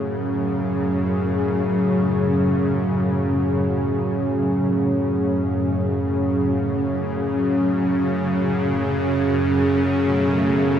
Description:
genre	ambient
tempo	free time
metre	none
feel	none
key	F# minor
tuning	A4 = 439 Hz
part	sweeping resonant pad	sustained chords	0.0-10.8 s	F#2 to C#4	-24 LUFS	right 1 dB	wide subtle chorus
part	bowed-like drone	drone	0.0-10.8 s	F#2 to C#3	-20 LUFS	equal	built-in reverb
room	wet cathedral reverb, RT60 5.2 s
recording	dreamy mix soaked in reverb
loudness	-18 LUFS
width	side -9 dB against mid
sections	0.0-10.8 A section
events	fade-in on analog synth pad 0.0-10.8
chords	0.0 F#m

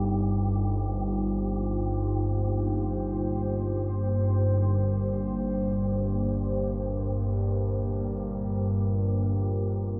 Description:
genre	ambient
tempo	free time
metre	none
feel	none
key	unclear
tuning	A4 = 440 Hz
part	dark analog pad	sustained chords	0.0-10.0 s	G2 to D5	-32 LUFS	equal	chorus, phaser
part	analog drone	drone	0.0-10.0 s	G1 to G2	-30 LUFS	equal	chorus
part	wind-like tuned noise texture	texture	0.0-10.0 s	G4	-43 LUFS	equal	built-in reverb
room	wet cathedral reverb, RT60 6.4 s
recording	dark, warm production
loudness	-28 LUFS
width	mono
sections	0.0-10.0 A section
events	none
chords	0.0 F5/G

